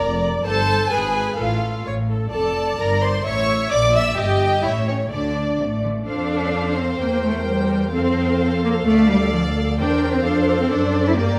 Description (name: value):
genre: quick classical-period movement for string orchestra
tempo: 130 BPM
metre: 2/4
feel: straight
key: D minor, F major from 6.1 s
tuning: A4 = 440 Hz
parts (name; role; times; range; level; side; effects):
- rich chamber violin section; melody; 0.0-11.4 s; C#5 to E6; -29 LUFS; equal; none
- rich chamber violin section; second line; 0.0-11.4 s; C#4 to E5; -27 LUFS; equal; none
- clear studio viola section; accompaniment; 0.0-11.4 s; G4 to E5; -28 LUFS; equal; none
- rich chamber double bass section; bass; 0.0-11.4 s; F1 to G2; -27 LUFS; equal; none
- warm chamber cello section; bass; 0.0-11.4 s; F2 to E4; -24 LUFS; equal; none
room: moderate recital hall reverb, RT60 1.6 s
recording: none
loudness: -20 LUFS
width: mono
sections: 0.0-6.1 A section; 6.1-11.4 B section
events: none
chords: 0.5 Gsus24; 0.9 G#m; 1.4 F/A; 1.9 A; 2.3 Dm/F; 2.8 Gmadd11; 3.3 A; 3.7 Bb; 4.2 Eb/G; 4.6 A; 5.1 D5; 6.1 F; 7.0 C7/E; 7.9 F; 8.9 Dm; 9.8 C7/E; 10.2 F; 10.7 D7/F#